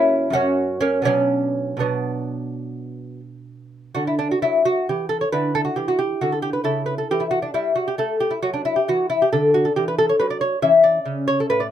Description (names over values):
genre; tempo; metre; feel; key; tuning
classical, baroque-style dance for lute; 80-94 BPM (dotted quarters); 12/8; rubato; B minor, D major from 4.0 s; A4 = 440 Hz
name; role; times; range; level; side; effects
lute; solo; 0.0-11.7 s; F#2 to E5; -18 LUFS; equal; none
room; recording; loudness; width
little or no reverb; close, detailed microphones; -18 LUFS; side -10 dB against mid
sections
0.0-4.0 A section; 4.0-11.7 A section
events
none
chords
0.0 F#; 1.1 Bm; 4.0 D; 5.3 D69; 6.7 A/C#; 9.3 D; 10.6 Aadd11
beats
0.34 | 1.06 1.80 2.52 3.23 | 3.95 4.64 5.32 5.98 | 6.65 7.33 8.00 8.65 | 9.31 9.97 10.61 11.27